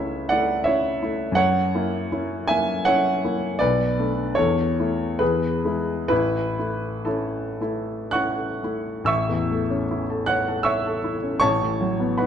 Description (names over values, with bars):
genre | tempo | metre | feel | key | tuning
classical, romantic nocturne for solo piano | 53-86 BPM | 3/4 | rubato | A major | A4 = 441 Hz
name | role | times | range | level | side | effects
clear grand piano | solo | 0.0-12.3 s | A1 to F#6 | -21 LUFS | equal | none
room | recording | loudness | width
wet recital hall reverb, RT60 1.5 s | dark, warm production | -21 LUFS | side -8 dB against mid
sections
0.0-9.1 A section; 9.1-12.3 B section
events
none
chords
0.0 A/C#; 1.4 F#7; 3.6 Bm7; 4.4 A/E; 5.2 E; 6.1 A; 11.4 B7(no3)/A